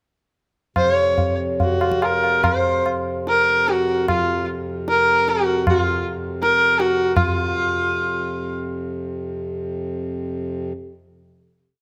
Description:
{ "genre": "indian classical, Hindustani", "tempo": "141-183 BPM", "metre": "4/4", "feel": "straight", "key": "unclear", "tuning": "A4 = 440 Hz", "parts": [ { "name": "rich sarangi", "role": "melody", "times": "0.8-8.5 s", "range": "F4 to Db5", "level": "-21 LUFS", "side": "equal", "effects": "none" }, { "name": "pedal harmonium", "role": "drone", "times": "0.8-10.7 s", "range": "F2 to C3", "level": "-30 LUFS", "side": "equal", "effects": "none" }, { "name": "tabla", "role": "percussion", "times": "0.8-7.3 s", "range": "none", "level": "-25 LUFS", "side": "equal", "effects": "none" } ], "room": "moderate recital hall reverb, RT60 1.5 s", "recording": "close, detailed microphones", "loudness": "-20 LUFS", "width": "mono", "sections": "0.8-7.2 theme; 7.2-9.9 final chord", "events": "speeding up 0.8-9.9", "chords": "none" }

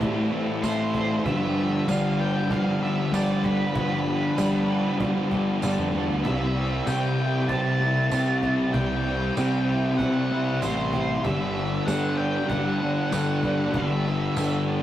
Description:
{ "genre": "rock, shoegaze and dream pop", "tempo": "96 BPM", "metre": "4/4", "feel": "straight", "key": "G major", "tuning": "A4 = 438 Hz", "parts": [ { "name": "electric guitar through a small old amp", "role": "arpeggios", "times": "0.0-14.8 s", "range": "F3 to A4", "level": "-31 LUFS", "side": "equal", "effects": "none" }, { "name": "crunchy overdriven guitar", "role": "riff", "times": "0.0-14.8 s", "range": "G2 to A4", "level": "-31 LUFS", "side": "right 4 dB", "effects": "none" }, { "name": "thick fuzz guitar", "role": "riff", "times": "0.0-14.8 s", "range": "G2 to C4", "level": "-28 LUFS", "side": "left 3 dB", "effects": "distortion" }, { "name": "fuzz picked electric bass", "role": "bass", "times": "0.0-14.8 s", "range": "G1 to G3", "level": "-26 LUFS", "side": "equal", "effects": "overdrive" }, { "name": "cajon", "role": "drums", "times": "0.0-14.5 s", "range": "none", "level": "-33 LUFS", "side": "right 1 dB", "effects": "none" }, { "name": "octave-fuzz lead guitar", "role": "melody", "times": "0.6-14.6 s", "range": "B4 to A5", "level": "-32 LUFS", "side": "equal", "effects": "distortion" }, { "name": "tambourine", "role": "percussion", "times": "0.6-14.5 s", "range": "none", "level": "-43 LUFS", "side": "right 5 dB", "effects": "none" } ], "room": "wet stone room reverb, RT60 1.3 s", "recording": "rough rehearsal-room recording, tube saturation", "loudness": "-22 LUFS", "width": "side -12 dB against mid", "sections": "0.0-14.8 A section", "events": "none", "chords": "0.0 Am7; 1.3 G7; 6.2 C; 11.2 Gadd9" }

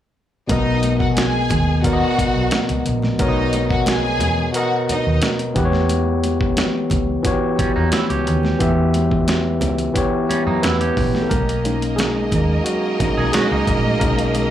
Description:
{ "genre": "lush 1970s-style soul", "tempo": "89 BPM", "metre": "4/4", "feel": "straight", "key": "B major", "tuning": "A4 = 440 Hz", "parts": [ { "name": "warm studio violin section", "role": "second line", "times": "0.5-5.2, 11.3-14.5 s", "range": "A#3 to G#5", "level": "-23 LUFS", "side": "right 1 dB", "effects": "slapback echo" }, { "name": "overdriven tine electric piano", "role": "accompaniment", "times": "0.5-14.5 s", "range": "B2 to E5", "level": "-20 LUFS", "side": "left 2 dB", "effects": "slapback echo" }, { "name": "vintage muted fingered electric bass", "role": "bass", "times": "0.5-14.5 s", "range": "A#1 to F#2", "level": "-21 LUFS", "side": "equal", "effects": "none" }, { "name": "dusty soul sampler-style drum kit", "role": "drums", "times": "0.5-14.5 s", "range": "hi-hat, kick drum, snare drum", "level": "-22 LUFS", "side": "right 1 dB", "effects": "none" }, { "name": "congas", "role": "percussion", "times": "0.5-14.5 s", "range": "none", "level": "-27 LUFS", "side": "right 3 dB", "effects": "slapback echo" }, { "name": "electric guitar at the edge of break-up", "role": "riff", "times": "7.6-14.5 s", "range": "G3 to G#4", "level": "-26 LUFS", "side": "right 5 dB", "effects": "slapback echo" } ], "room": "light reverb", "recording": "live gig heard through the venue's PA, club reverb", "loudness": "-16 LUFS", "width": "side -11 dB against mid", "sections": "0.5-11.3 A section; 11.3-14.5 B section", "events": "tine electric piano solo 11.3-14.5", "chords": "0.5 Bmaj7; 5.6 Em6; 11.3 Bmaj7" }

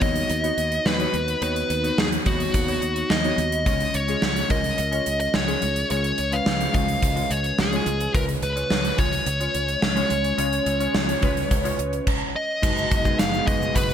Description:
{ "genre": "1980s-style pop", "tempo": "107 BPM", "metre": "4/4", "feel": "straight", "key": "unclear", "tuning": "A4 = 442 Hz", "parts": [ { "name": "fuzz lead guitar", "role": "melody", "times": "0.0-13.9 s", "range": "F#4 to E#5", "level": "-25 LUFS", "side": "equal", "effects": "distortion" }, { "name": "glassy digital keys", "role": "accompaniment", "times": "0.0-13.9 s", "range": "C#3 to D#5", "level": "-28 LUFS", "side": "left 2 dB", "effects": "chorus" }, { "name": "modern bright fingered electric bass", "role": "bass", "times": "0.0-13.9 s", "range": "F#1 to D#2", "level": "-28 LUFS", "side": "equal", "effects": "none" }, { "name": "gated 80s drum kit", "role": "drums", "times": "0.0-13.9 s", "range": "crash cymbal, hi-hat, kick drum, snare drum", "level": "-24 LUFS", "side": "right 1 dB", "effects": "gated reverb" }, { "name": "soft string machine", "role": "sustained chords", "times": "12.9-13.9 s", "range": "B2 to F#4", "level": "-31 LUFS", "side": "right 1 dB", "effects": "ensemble chorus" }, { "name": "egg shaker", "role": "percussion", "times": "12.6-13.9 s", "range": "none", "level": "-43 LUFS", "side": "right 9 dB", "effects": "none" } ], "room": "moderate plate reverb, RT60 2.9 s", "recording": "bright 1980s-style digital production", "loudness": "-20 LUFS", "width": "side -9 dB against mid", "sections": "0.0-12.6 A section; 12.6-13.9 B section", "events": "none", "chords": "0.0 Badd9/D#; 3.7 C#; 12.6 G#m7/F#" }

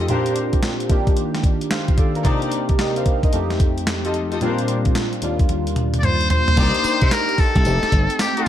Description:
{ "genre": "R&B, new jack swing", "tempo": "111 BPM", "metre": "4/4", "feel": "swing 65% on 16ths", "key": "C dorian", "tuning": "A4 = 440 Hz", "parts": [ { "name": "warm analog keys", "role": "accompaniment", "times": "0.0-8.5 s", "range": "Eb2 to F5", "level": "-22 LUFS", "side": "equal", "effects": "chorus, phaser" }, { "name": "muted studio string section", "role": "stabs", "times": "0.0-8.5 s", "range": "D4 to Eb5", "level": "-28 LUFS", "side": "left 3 dB", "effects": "ping-pong delay" }, { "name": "clean 12-bit digital drum machine", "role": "drums", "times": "0.1-8.5 s", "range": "crash cymbal, handclaps, hi-hat, kick drum, snare drum, tambourine, toms", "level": "-20 LUFS", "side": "equal", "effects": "none" }, { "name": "trumpet with metal mute", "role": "melody", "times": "6.0-8.5 s", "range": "G4 to D5", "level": "-20 LUFS", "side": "left 2 dB", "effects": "none" }, { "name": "glassy slap bass", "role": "bass", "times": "6.6-8.1 s", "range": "F1 to C3", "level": "-20 LUFS", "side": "equal", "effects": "none" } ], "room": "light reverb, digital ambience", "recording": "dark, warm production", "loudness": "-17 LUFS", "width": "side -11 dB against mid", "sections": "0.0-6.6 A section; 6.6-8.5 B section", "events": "drum fill 5.5-6.6", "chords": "0.1 Bb69; 0.9 Ebmaj9; 2.2 Cm9; 3.3 F9; 4.4 Bb69; 5.2 Ebmaj9; 6.6 Cm9; 7.7 F9" }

